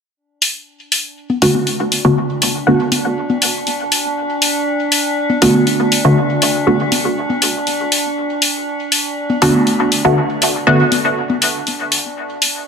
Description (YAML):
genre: dub techno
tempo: 120 BPM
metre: 4/4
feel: straight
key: B minor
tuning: A4 = 438 Hz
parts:
  - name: metallic inharmonic drone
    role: texture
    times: 1.4-12.7 s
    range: D4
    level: -21 LUFS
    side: right 1 dB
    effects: chorus, built-in reverb
  - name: electronic hi-hat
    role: drums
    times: 0.4-12.5 s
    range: none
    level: -16 LUFS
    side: left 1 dB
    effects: none
  - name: congas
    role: percussion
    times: 1.3-11.4 s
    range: none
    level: -22 LUFS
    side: left 4 dB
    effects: dub echo
  - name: filtered dub chord stab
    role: stabs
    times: 1.4-10.8 s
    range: D3 to F#4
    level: -14 LUFS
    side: equal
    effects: chorus, phaser, dub echo
room: wet lush hall reverb, RT60 1.8 s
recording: none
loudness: -13 LUFS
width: side -6 dB against mid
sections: 0.2-12.7 A section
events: filter sweep on synth stab 0.2-12.7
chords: 0.2 Bm7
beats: | 0.17 0.67 1.17 1.67 | 2.17 2.67 3.17 3.67 | 4.17 4.67 5.17 5.67 | 6.17 6.67 7.17 7.67 | 8.17 8.67 9.17 9.67 | 10.17 10.67 11.17 11.67 | 12.17 12.67